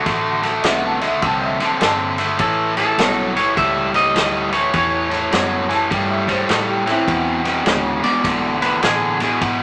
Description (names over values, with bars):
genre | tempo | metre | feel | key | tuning
electric blues shuffle | 103 BPM | 4/4 | swing 64% on 8ths | A mixolydian | A4 = 440 Hz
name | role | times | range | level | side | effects
electric guitar at the edge of break-up | melody | 0.0-9.4 s | F#4 to E5 | -23 LUFS | equal | warbly pitch drift
cranked stack guitar | riff | 0.0-9.6 s | E2 to C4 | -21 LUFS | equal | overdrive
vintage muted fingered electric bass | bass | 0.0-9.6 s | G1 to A2 | -33 LUFS | equal | none
vintage drum kit | drums | 0.1-9.6 s | kick drum, ride cymbal, snare drum | -24 LUFS | equal | none
bright upright piano | second line | 0.6-7.8 s | C4 to A5 | -25 LUFS | equal | none
reed electric piano | accompaniment | 0.6-8.5 s | F#3 to F#4 | -29 LUFS | equal | none
room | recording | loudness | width
moderate studio ambience, RT60 0.5 s | none | -18 LUFS | mono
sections
0.0-9.6 A section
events
none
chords
0.0 D7; 2.4 A7; 7.1 E7